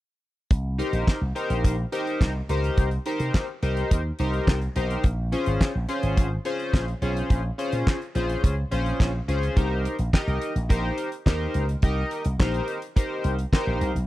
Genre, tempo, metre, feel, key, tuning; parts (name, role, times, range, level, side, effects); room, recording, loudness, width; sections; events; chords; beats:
early-eighties boogie funk; 106 BPM; 4/4; straight; A4 = 438 Hz
slap bass with an envelope filter; bass; 0.5-14.1 s; Ab1 to C3; -26 LUFS; equal
damped 70s drum kit; drums; 0.5-14.1 s; handclaps, hi-hat, kick drum, snare drum; -21 LUFS; equal
chorused polysynth; accompaniment; 0.8-13.9 s; Db4 to Eb5; -28 LUFS; left 1 dB
small room reverb; dry, close 1970s-style studio recording; -22 LUFS; side -16 dB against mid
0.5-9.6 A section; 9.6-14.1 B section
0.5 Cm7; 5.0 Bbm7; 9.6 Cm7
| 0.51 1.08 1.64 2.21 | 2.77 3.34 3.91 4.47 | 5.04 5.61 6.17 6.74 | 7.30 7.87 8.44 9.00 | 9.57 10.13 10.70 11.27 | 11.83 12.40 12.96 13.53